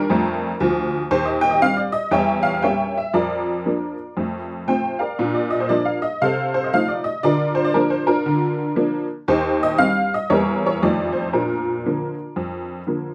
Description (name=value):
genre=jazz, stride piano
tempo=117 BPM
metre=4/4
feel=swing 61% on 8ths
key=Bb major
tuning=A4 = 445 Hz
part: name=honky-tonk upright piano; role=solo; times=0.0-13.1 s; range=D2 to G5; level=-21 LUFS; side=equal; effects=none
room=light reverb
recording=close, detailed microphones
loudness=-21 LUFS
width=mono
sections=0.0-13.1 A section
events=none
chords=0.0 Bb; 1.1 Cm/Eb; 2.1 Edim7; 3.1 Bb/F; 4.2 F; 5.2 Bb; 6.2 F7/C; 7.2 Bb/D; 9.3 Cm/Eb; 10.3 Edim7; 10.8 F7; 11.3 Bb